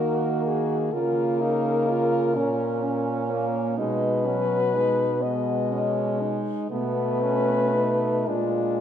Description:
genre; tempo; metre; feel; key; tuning
classical, lyrical piece for horn quartet; 37-43 BPM (dotted quarters); 6/8; rubato; unclear; A4 = 440 Hz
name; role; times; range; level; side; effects
clear French horn; melody; 0.0-8.8 s; D4 to Eb5; -26 LUFS; left 4 dB; none
clear French horn; second line; 0.0-8.8 s; B3 to Gb4; -28 LUFS; right 6 dB; none
warm French horn; accompaniment; 0.0-8.8 s; Gb3 to Db4; -28 LUFS; left 2 dB; none
warm French horn; bass; 0.0-8.8 s; Bb2 to Eb3; -29 LUFS; right 2 dB; none
room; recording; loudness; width
wet recital hall reverb, RT60 1.7 s; none; -22 LUFS; side -9 dB against mid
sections
0.0-8.8 A section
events
none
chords
0.0 Ebm; 0.9 Bbm/Db; 3.8 Abm/Cb; 6.7 B9; 8.3 Bb7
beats
| 0.94 2.36 | 3.79 5.23 | 6.71 8.28

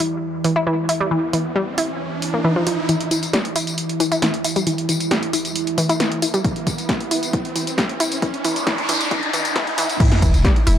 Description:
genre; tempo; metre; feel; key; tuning
driving peak-time techno; 135 BPM; 4/4; straight; E minor; A4 = 437 Hz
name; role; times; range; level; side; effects
analog pluck; riff; 0.0-10.8 s; E3 to E4; -22 LUFS; left 1 dB; chorus, tube saturation, cassette tape, sidechain pumping, dub echo
deep dark ambient pad; drone; 0.0-10.0 s; E3 to E4; -27 LUFS; right 2 dB; chorus, built-in reverb, sidechain pumping
punchy analog drum machine; drums; 0.0-10.8 s; crash cymbal, hi-hat, ride cymbal, snare drum, tambourine; -23 LUFS; equal; sidechain pumping on cymbals, sidechain pumping on hats, sidechain pumping on perc
riser, noise sweep and sub drop; sound effects; 0.8-10.8 s; none; -25 LUFS; equal; none
electronic kick drum; drums; 6.4-10.5 s; none; -20 LUFS; equal; none
growling 808-style bass; bass; 10.2-10.8 s; E1; -17 LUFS; equal; overdrive, sidechain pumping, low-pass filter
room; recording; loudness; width
light reverb; high-pass filter; -18 LUFS; side -10 dB against mid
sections
0.0-2.9 A section; 2.9-10.0 B section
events
filter sweep on synth arpeggio sound 0.0-2.9, 2.9-10.0; riser 0.8-2.9, 2.9-10.0; build-up 2.9-10.0; noise sweep 8.2-10.0; impact 10.0-10.8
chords
0.0 N.C.; 10.0 Em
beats
0.22 0.67 | 1.11 1.56 2.00 2.44 | 2.89 3.33 3.78 4.22 | 4.67 5.11 5.56 6.00 | 6.45 6.89 7.33 7.78 | 8.22 8.67 9.11 9.56 | 10.00 10.45

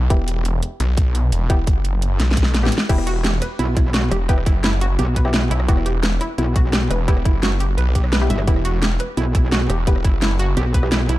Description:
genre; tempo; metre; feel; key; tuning
dark technical drum and bass; 172 BPM; 4/4; straight; E minor; A4 = 439 Hz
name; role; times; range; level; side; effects
snarling distorted saw bass; bass; 0.0-11.2 s; E1 to B1; -19 LUFS; equal; distortion, sidechain pumping
filtered dub chord stab; stabs; 0.1-10.9 s; B3 to G4; -29 LUFS; left 2 dB; chorus, digital delay
dubstep drum kit; drums; 0.1-11.2 s; crash cymbal, hi-hat, rim click, snare drum; -23 LUFS; equal; none
electronic kick drum; drums; 0.1-10.8 s; none; -17 LUFS; equal; none
analog pluck; arpeggios; 2.9-11.2 s; E4 to E5; -27 LUFS; right 3 dB; chorus, sidechain pumping, digital delay
metallic wobble bass; bass; 3.6-11.1 s; G1 to B1; -19 LUFS; equal; distortion, chorus
room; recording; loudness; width
digital ambience; dark, warm production; -16 LUFS; side -16 dB against mid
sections
0.0-11.2 A section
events
drum fill 2.2-2.9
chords
0.0 Em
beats
| 0.10 0.45 0.80 1.15 | 1.50 1.85 2.20 2.54 | 2.89 3.24 3.59 3.94 | 4.29 4.64 4.99 5.34 | 5.68 6.03 6.38 6.73 | 7.08 7.43 7.78 8.13 | 8.47 8.82 9.17 9.52 | 9.87 10.22 10.57 10.92

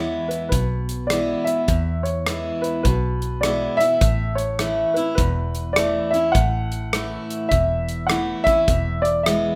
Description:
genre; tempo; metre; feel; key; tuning
honky-tonk and classic country; 103 BPM; 4/4; swing 63% on 8ths; E mixolydian; A4 = 440 Hz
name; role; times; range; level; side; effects
dark upright piano; melody; 0.0-9.6 s; B4 to F#5; -25 LUFS; equal; none
picked steel-string acoustic guitar; accompaniment; 0.0-9.6 s; E2 to E4; -28 LUFS; equal; none
vintage muted fingered electric bass; bass; 0.0-9.5 s; E1 to E2; -27 LUFS; equal; none
natural country drum kit; drums; 0.3-9.4 s; hi-hat, kick drum, rim click; -25 LUFS; equal; none
room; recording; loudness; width
moderate studio reverb, RT60 0.8 s; none; -21 LUFS; mono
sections
0.0-9.6 A section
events
none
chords
0.0 E; 4.0 A; 8.7 E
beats
0.52 1.10 | 1.69 2.27 2.85 3.43 | 4.02 4.60 5.18 5.76 | 6.35 6.93 7.51 8.10 | 8.68 9.26

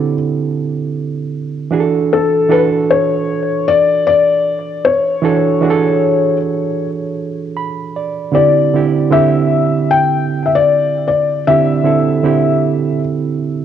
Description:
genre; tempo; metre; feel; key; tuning
hip hop; 77 BPM; 4/4; swing 64% on 16ths; unclear; A4 = 439 Hz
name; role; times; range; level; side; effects
felt-muted upright piano; melody; 0.0-13.0 s; A4 to G5; -14 LUFS; left 6 dB; low-pass filter, cassette tape, analog delay
barky reed electric piano; accompaniment; 0.0-13.6 s; D3 to B5; -15 LUFS; right 6 dB; overdrive, low-pass filter
room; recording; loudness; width
light reverb; home recording on cassette; -12 LUFS; side -9 dB against mid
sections
0.0-13.6 A section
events
none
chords
0.0 D9sus4; 1.7 E9sus4; 8.4 D9sus4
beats
0.56 1.34 | 2.12 2.90 3.68 4.46 | 5.24 6.02 6.80 7.58 | 8.36 9.13 9.91 10.69 | 11.47 12.25 13.03

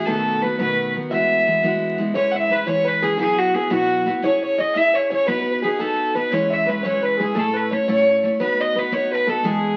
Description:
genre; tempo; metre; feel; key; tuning
celtic folk, Celtic jig; 115 BPM (dotted quarters); 6/8; straight; E major; A4 = 438 Hz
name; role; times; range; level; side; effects
rich fiddle; melody; 0.0-9.8 s; F#4 to F#5; -22 LUFS; equal; none
archtop guitar, miked and amplified; second line; 0.0-9.8 s; F#4 to E5; -30 LUFS; equal; none
picked steel-string acoustic guitar; accompaniment; 0.0-9.8 s; A2 to C#5; -26 LUFS; equal; none
wooden flute; second line; 2.2-9.8 s; F#4 to E5; -31 LUFS; equal; none
room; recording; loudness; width
wet studio reverb, RT60 0.6 s; very old 78 rpm record, vinyl crackle, nothing above 7.8 kHz; -20 LUFS; mono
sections
0.0-2.2 A section; 2.2-9.8 B section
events
none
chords
0.1 B7; 1.1 Eadd9; 2.2 E6; 3.2 Bsus4; 4.2 C#m; 5.3 B; 6.3 E6; 7.4 A; 8.4 B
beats
| 0.06 0.58 | 1.11 1.63 | 2.15 2.67 | 3.19 3.72 | 4.24 4.76 | 5.28 5.80 | 6.32 6.84 | 7.36 7.88 | 8.40 8.92 | 9.44

